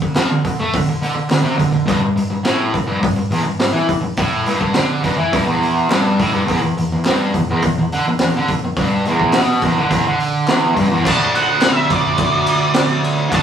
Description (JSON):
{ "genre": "garage rock duo or trio", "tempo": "105 BPM", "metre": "4/4", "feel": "straight", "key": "unclear", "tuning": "A4 = 441 Hz", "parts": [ { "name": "raw garage drum kit", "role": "drums", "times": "0.0-13.4 s", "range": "crash cymbal, hi-hat, kick drum, snare drum", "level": "-19 LUFS", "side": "equal", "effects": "none" }, { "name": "fuzz guitar", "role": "riff", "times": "0.2-13.4 s", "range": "E2 to D4", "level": "-16 LUFS", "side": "right 1 dB", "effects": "distortion" }, { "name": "group handclap", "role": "percussion", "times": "0.2-12.9 s", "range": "none", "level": "-30 LUFS", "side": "equal", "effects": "none" }, { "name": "octave-fuzz lead guitar", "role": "melody", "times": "11.1-13.4 s", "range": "D5 to A5", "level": "-18 LUFS", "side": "right 2 dB", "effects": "distortion" } ], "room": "moderate studio reverb, RT60 0.6 s", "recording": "rough rehearsal-room recording, studio reverb", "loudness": "-14 LUFS", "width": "side -8 dB against mid", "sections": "0.0-11.1 A section; 11.1-13.4 B section", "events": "none", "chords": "0.0 D5; 1.9 G5; 6.5 E5; 11.1 D5", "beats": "0.17 0.74 1.31 | 1.88 2.46 3.03 3.60 | 4.18 4.75 5.33 5.90 | 6.47 7.05 7.62 8.20 | 8.77 9.34 9.91 10.48 | 11.05 11.62 12.19 12.76 | 13.32" }